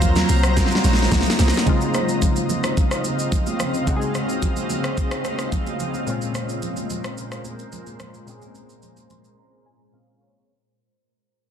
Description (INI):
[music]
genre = amapiano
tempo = 109 BPM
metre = 4/4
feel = straight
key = Db major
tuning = A4 = 440 Hz
[part]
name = warm analog keys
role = accompaniment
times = 0.0-10.5 s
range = Bb2 to C6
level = -26 LUFS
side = left 2 dB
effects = chorus, low-pass filter
[part]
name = granular cloud pad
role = sustained chords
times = 0.0-10.4 s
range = Bb2 to Bb5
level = -26 LUFS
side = equal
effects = built-in reverb, sidechain pumping, low-pass filter
[part]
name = deep log drum bass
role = bass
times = 0.0-1.5 s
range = Bb1 to Eb2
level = -19 LUFS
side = equal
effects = none
[part]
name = smooth R&B drum kit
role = drums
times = 0.0-9.4 s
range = hi-hat, kick drum, rim click, shaker, snare drum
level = -22 LUFS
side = equal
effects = none
[part]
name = congas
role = percussion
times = 0.0-9.2 s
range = none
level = -31 LUFS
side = right 8 dB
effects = none
[sound]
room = light reverb, digital ambience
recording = dense, heavily limited modern master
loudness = -19 LUFS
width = side -8 dB against mid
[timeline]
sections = 0.0-1.7 A section; 1.7-10.5 B section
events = drum fill 0.6-1.7; fade-out 1.7-10.5; filter sweep 1.7-10.5; synth keys fill 8.8-10.5; break 9.4-10.5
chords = 0.0 Ebm69; 1.7 Dbmaj9; 6.1 Bbm9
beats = 0.02 0.57 1.12 | 1.67 2.22 2.77 3.32 | 3.87 4.42 4.97 5.52 | 6.07 6.62 7.17 7.72 | 8.28 8.83 9.38 9.93